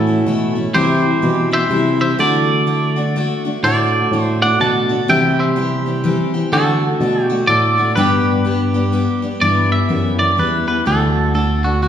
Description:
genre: honky-tonk and classic country.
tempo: 125 BPM.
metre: 3/4.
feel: swing 61% on 8ths.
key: G major.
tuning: A4 = 439 Hz.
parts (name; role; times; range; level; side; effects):
twangy electric guitar; melody; 0.0-11.9 s; F#4 to A5; -18 LUFS; right 2 dB; none.
picked steel-string acoustic guitar; accompaniment; 0.0-11.9 s; G2 to G4; -19 LUFS; left 2 dB; none.
barky tine electric piano; bass; 0.0-11.9 s; D2 to D3; -19 LUFS; right 1 dB; none.
room: wet recital hall reverb, RT60 1.8 s.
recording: recorded in a church or concert hall.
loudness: -14 LUFS.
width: side -9 dB against mid.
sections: 0.0-9.4 A section; 9.4-11.9 B section.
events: none.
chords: 0.0 A; 0.7 C; 2.2 D; 5.1 C; 6.5 D; 8.0 G; 9.4 G6; 10.9 D.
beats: 0.27 | 0.75 1.23 1.71 | 2.19 2.67 3.15 | 3.64 4.12 4.60 | 5.08 5.56 6.04 | 6.53 7.01 7.49 | 7.97 8.45 8.94 | 9.42 9.90 10.38 | 10.87 11.35 11.83.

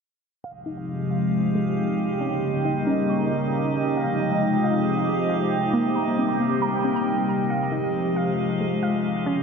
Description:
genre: hip hop.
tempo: 136 BPM.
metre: 4/4.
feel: half-time.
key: F minor.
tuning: A4 = 443 Hz.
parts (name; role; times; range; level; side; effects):
sweeping resonant pad; sustained chords; 0.4-9.4 s; C3 to G4; -22 LUFS; equal; chorus, low-pass filter.
warbly dusty pluck; arpeggios; 0.4-9.4 s; Ab3 to Db6; -29 LUFS; equal; chorus, phaser, low-pass filter, tape echo.
drifting glass-harmonics texture; texture; 0.9-9.4 s; Ab3 to F5; -31 LUFS; right 2 dB; chorus, built-in reverb.
room: wet lush hall reverb, RT60 2.2 s.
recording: dreamy mix soaked in reverb.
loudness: -21 LUFS.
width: side -5 dB against mid.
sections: 0.4-9.4 A section.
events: filter sweep 0.4-9.4.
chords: 0.4 Fm9; 2.2 Eb7; 4.0 Fm9; 5.7 Cm7; 7.5 Fm9.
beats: | 0.44 0.88 1.32 1.77 | 2.21 2.65 3.09 3.53 | 3.97 4.41 4.85 5.29 | 5.74 6.18 6.62 7.06 | 7.50 7.94 8.38 8.82 | 9.27.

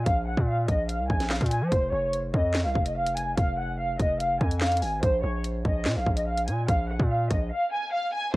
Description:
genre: hip hop, drill.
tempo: 145 BPM.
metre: 4/4.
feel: half-time.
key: unclear.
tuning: A4 = 440 Hz.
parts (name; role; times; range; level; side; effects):
distorted 808-style bass; bass; 0.0-8.4 s; F1 to F3; -28 LUFS; equal; distortion.
warm studio violin section; melody; 0.1-8.4 s; C5 to Ab5; -28 LUFS; equal; low-pass filter, cassette tape, tape echo.
drill drum kit; drums; 0.1-8.4 s; handclaps, hi-hat, kick drum, rim click, snare drum; -27 LUFS; equal; none.
room: light reverb, digital ambience.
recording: home recording on cassette.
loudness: -24 LUFS.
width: side -19 dB against mid.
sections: 0.0-8.4 A section.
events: filter sweep on violin section 0.0-8.3; break 7.5-8.3.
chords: 0.0 Bb5; 1.7 N.C.; 5.0 Bb5.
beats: | 0.06 0.48 0.89 1.30 | 1.72 2.13 2.55 2.96 | 3.37 3.79 4.20 4.62 | 5.03 5.44 5.86 6.27 | 6.68 7.10 7.51 7.93 | 8.34.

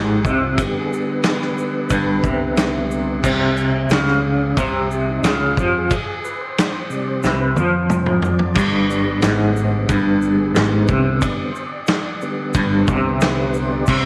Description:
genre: psychedelic rock.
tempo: 90 BPM.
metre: 4/4.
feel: straight.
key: unclear.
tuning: A4 = 445 Hz.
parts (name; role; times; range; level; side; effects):
tonewheel organ; sustained chords; 0.0-14.1 s; C3 to D5; -27 LUFS; equal; overdrive, chorus vibrato, slow rotary speaker.
twangy electric guitar; riff; 0.0-14.1 s; G2 to F3; -21 LUFS; equal; tremolo, double-tracked.
fingered electric bass; bass; 0.0-14.1 s; G1 to F2; -27 LUFS; equal; none.
vintage drum kit; drums; 0.2-14.0 s; crash cymbal, kick drum, ride cymbal, snare drum, toms; -24 LUFS; equal; none.
egg shaker; percussion; 0.3-14.0 s; none; -45 LUFS; equal; none.
room: moderate plate reverb, RT60 1.6 s, small room reverb.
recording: lossy compression artefacts.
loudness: -19 LUFS.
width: mono.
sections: 0.0-14.1 A section.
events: tonewheel organ solo 0.0-14.1; drum fill 7.2-8.6.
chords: 0.0 G; 3.2 C5; 8.6 G.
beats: | 0.59 1.25 1.92 2.58 | 3.25 3.91 4.58 5.24 | 5.91 6.57 7.24 7.90 | 8.57 9.23 9.90 10.56 | 11.23 11.89 12.56 13.22 | 13.89.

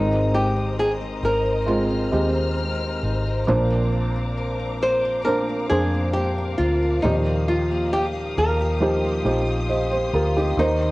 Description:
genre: pop ballad.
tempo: 67 BPM.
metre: 4/4.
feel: straight.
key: unclear.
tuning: A4 = 440 Hz.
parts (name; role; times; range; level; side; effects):
flamenco guitar; melody; 0.0-10.9 s; Eb4 to C5; -23 LUFS; equal; cassette tape.
felt-muted upright piano; accompaniment; 0.0-10.9 s; Ab2 to Eb5; -24 LUFS; right 1 dB; cassette tape, plate reverb.
warm studio string section; sustained chords; 0.0-10.9 s; G4 to F6; -32 LUFS; left 2 dB; cassette tape.
picked steel-string acoustic guitar; arpeggios; 0.0-10.9 s; Bb2 to Bb4; -32 LUFS; left 3 dB; cassette tape, plate reverb, tape echo.
vintage muted fingered electric bass; bass; 0.0-10.9 s; Ab1 to F2; -25 LUFS; equal; none.
room: moderate studio ambience, RT60 0.5 s.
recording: home recording on cassette, nothing above 10.5 kHz.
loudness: -19 LUFS.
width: side -20 dB against mid.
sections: 0.0-10.9 A section.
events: none.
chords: 0.0 Abadd9; 3.5 Bbadd9; 7.0 Ebadd9.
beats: 0.78 1.68 2.58 | 3.48 4.37 5.27 6.16 | 7.04 7.93 8.81 9.69 | 10.58.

